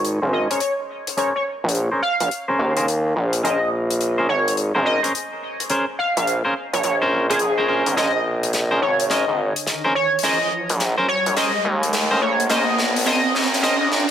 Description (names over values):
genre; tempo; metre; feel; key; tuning
glitch hop; 106 BPM; 4/4; swing 64% on 16ths; Bb minor; A4 = 440 Hz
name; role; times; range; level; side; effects
gritty driven synth bass; bass; 0.0-14.1 s; Ab1 to Eb2; -22 LUFS; equal; high-pass filter
gated 80s drum kit; drums; 0.0-14.1 s; hi-hat, snare drum; -24 LUFS; left 2 dB; high-pass filter on hats, high-pass filter on snare, high-pass filter on room
clean electric guitar; stabs; 0.2-13.8 s; Db4 to C5; -24 LUFS; equal; low-pass filter, dub echo
sync lead; melody; 0.3-13.9 s; Ab4 to F5; -22 LUFS; equal; wide subtle chorus, dub echo
riser; sound effects; 9.4-14.1 s; none; -26 LUFS; right 2 dB; none
room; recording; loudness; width
moderate plate reverb, RT60 1.4 s, small room ambience; dense, heavily limited modern master, vinyl crackle, high-pass filter; -18 LUFS; side -9 dB against mid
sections
0.0-14.1 A section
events
build-up 0.0-14.1; filter sweep on clean electric guitar 0.0-14.1; filter sweep 0.0-14.1; drum fill 8.0-14.1; riser 9.4-14.1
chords
0.0 Bbm9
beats
0.05 0.61 | 1.18 1.75 2.31 2.88 | 3.44 4.01 4.58 5.14 | 5.71 6.27 6.84 7.41 | 7.97 8.54 9.10 9.67 | 10.24 10.80 11.37 11.93 | 12.50 13.07 13.63